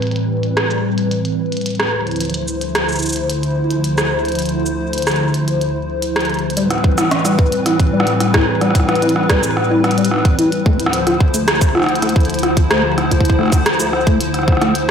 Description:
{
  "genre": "IDM",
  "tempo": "110 BPM",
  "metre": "4/4",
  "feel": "straight",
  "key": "A minor",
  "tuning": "A4 = 439 Hz",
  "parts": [
    { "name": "hollow soft pad", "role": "sustained chords", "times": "0.0-14.9 s", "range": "D2 to C5", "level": "-18 LUFS", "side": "left 1 dB", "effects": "ensemble chorus" },
    { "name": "glitchy drum kit", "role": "drums", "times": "0.0-14.9 s", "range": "cabasa, hi-hat, rim click", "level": "-19 LUFS", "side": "right 1 dB", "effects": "soft clipping on snare, low-pass filter on snare, low-pass filter on hats, low-pass filter on perc, low-pass filter on room, ping-pong delay" },
    { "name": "deep acid bass", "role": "arpeggios", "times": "6.6-14.9 s", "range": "G3 to F4", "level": "-20 LUFS", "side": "left 1 dB", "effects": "ensemble chorus, tape echo" },
    { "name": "electronic kick drum", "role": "drums", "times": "6.8-14.6 s", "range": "none", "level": "-15 LUFS", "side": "equal", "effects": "none" }
  ],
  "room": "moderate echo chamber reverb, RT60 1.5 s, digital ambience",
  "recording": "blown-out, overdriven recording, overdrive",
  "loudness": "-14 LUFS",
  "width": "side -7 dB against mid",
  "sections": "0.0-6.6 A section; 6.6-14.9 B section",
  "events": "filter sweep on analog synth pad 0.0-6.6",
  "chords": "0.0 Am9; 1.9 Dm9; 6.6 Am9; 10.7 Dm9",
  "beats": "| 0.02 0.57 1.11 1.66 | 2.21 2.75 3.30 3.84 | 4.39 4.93 5.48 6.02 | 6.57 7.11 7.66 8.21 | 8.75 9.30 9.84 10.39 | 10.93 11.48 12.02 12.57 | 13.11 13.66 14.21 14.75"
}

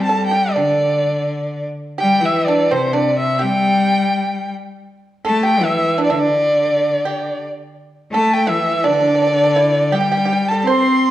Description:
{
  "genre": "chinese traditional, Chinese chamber ensemble",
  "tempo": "83 BPM",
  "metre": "2/4",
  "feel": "rubato",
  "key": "G zhi mode",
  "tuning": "A4 = 440 Hz",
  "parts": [
    { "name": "clear erhu", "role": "melody", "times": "0.0-11.1 s", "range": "C5 to C6", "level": "-17 LUFS", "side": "equal", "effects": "none" },
    { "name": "bright cello", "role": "second line", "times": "0.0-11.1 s", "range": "C3 to C4", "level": "-20 LUFS", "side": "left 2 dB", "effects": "none" },
    { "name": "pipa", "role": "second line", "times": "0.0-11.1 s", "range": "C4 to C5", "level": "-22 LUFS", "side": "right 4 dB", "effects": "none" }
  ],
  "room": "wet recital hall reverb, RT60 1.4 s",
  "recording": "worn, warbling old tape, cassette tape, warbly pitch drift",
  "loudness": "-14 LUFS",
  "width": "side -13 dB against mid",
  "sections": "0.0-4.9 A section; 4.9-11.1 B section",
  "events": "none",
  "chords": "none",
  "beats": "| 0.58 1.30 | 2.02 2.73 | 3.44 4.17 | 4.90 5.63 | 6.35 7.07 | 7.78 8.49 | 9.20 9.92 | 10.65"
}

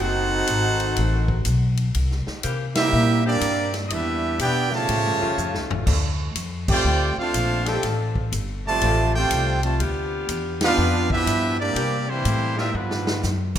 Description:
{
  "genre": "jazz, big band swing",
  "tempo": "122 BPM",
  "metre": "4/4",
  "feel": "swing 66% on 8ths",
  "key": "C major",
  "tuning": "A4 = 440 Hz",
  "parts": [
    { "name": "brilliant trumpet section", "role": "melody", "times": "0.0-13.2 s", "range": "G3 to A5", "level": "-24 LUFS", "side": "right 1 dB", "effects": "none" },
    { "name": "clear trombone section", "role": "second line", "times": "0.0-13.2 s", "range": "C3 to G4", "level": "-26 LUFS", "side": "right 2 dB", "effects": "none" },
    { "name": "warm saxophone section", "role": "sustained chords", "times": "0.0-12.7 s", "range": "D#3 to A4", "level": "-32 LUFS", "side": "left 3 dB", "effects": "none" },
    { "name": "upright bass", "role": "bass", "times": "0.0-13.6 s", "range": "F#1 to C3", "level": "-24 LUFS", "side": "left 1 dB", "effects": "none" },
    { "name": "swinging big-band drum kit", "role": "drums", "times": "0.5-13.6 s", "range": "crash cymbal, hi-hat, kick drum, ride cymbal, snare drum, toms", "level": "-29 LUFS", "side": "left 1 dB", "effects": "none" }
  ],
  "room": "light reverb",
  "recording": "minimal, uncompressed stereo recording",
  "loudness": "-20 LUFS",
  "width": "side -10 dB against mid",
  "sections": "0.0-13.6 A section",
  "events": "band accent 2.7, 6.6, 10.5; drum fill 5.4-5.9, 12.7-13.2",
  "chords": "0.0 F#dim7; 1.9 C7; 3.9 Em7; 4.9 Aaug7; 5.9 Dm7; 9.8 G7; 11.8 C7; 12.7 G7",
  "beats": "0.48 0.97 1.46 | 1.95 2.44 2.93 3.42 | 3.91 4.40 4.89 5.38 | 5.87 6.36 6.85 7.34 | 7.83 8.32 8.81 9.31 | 9.80 10.29 10.78 11.27 | 11.76 12.25 12.74 13.24"
}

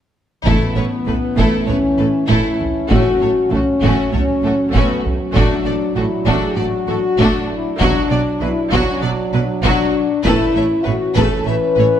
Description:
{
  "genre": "cinematic, epic orchestral film score",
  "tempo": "98 BPM",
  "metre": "4/4",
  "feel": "straight",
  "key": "A major",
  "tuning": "A4 = 440 Hz",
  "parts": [
    { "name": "warm trombone section", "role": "sustained chords", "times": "0.4-12.0 s", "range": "E3 to D4", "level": "-25 LUFS", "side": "right 6 dB", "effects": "none" },
    { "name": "rich symphonic violin section", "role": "melody", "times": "0.5-11.9 s", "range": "F#4 to E5", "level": "-26 LUFS", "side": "left 3 dB", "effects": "none" },
    { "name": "rich chamber violin section", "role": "second line", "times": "0.5-11.8 s", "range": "C#4 to D5", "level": "-25 LUFS", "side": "left 2 dB", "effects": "none" },
    { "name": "rich symphonic viola section", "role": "accompaniment", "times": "0.5-11.9 s", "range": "F#3 to A3", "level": "-24 LUFS", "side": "right 1 dB", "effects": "none" },
    { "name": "mellow French horn section", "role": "sustained chords", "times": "0.5-12.0 s", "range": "A3 to B4", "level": "-18 LUFS", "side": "left 4 dB", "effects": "none" },
    { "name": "clear symphonic cello section", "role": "bass", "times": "0.5-11.9 s", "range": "A2 to B2", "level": "-23 LUFS", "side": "right 4 dB", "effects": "none" },
    { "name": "rich symphonic double bass section", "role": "bass", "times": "0.5-11.9 s", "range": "A1 to B1", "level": "-23 LUFS", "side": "right 4 dB", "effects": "none" },
    { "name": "taiko ensemble", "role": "drums", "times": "0.5-11.7 s", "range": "none", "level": "-21 LUFS", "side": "equal", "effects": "none" },
    { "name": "timpani", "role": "percussion", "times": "0.5-3.8 s", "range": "A2", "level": "-25 LUFS", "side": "equal", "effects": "none" }
  ],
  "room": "moderate recital hall reverb, RT60 1.7 s",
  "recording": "none",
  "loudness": "-14 LUFS",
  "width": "side -10 dB against mid",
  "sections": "0.4-12.0 A section",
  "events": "break 0.0-0.4; drum fill 0.0-0.4",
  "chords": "0.4 Aadd9; 2.9 F#m/A; 5.3 D/A; 7.8 Bm; 10.2 Aadd9",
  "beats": "| 0.45 1.06 1.67 2.29 | 2.90 3.51 4.12 4.73 | 5.35 5.96 6.57 7.18 | 7.79 8.41 9.02 9.63 | 10.24 10.86 11.47"
}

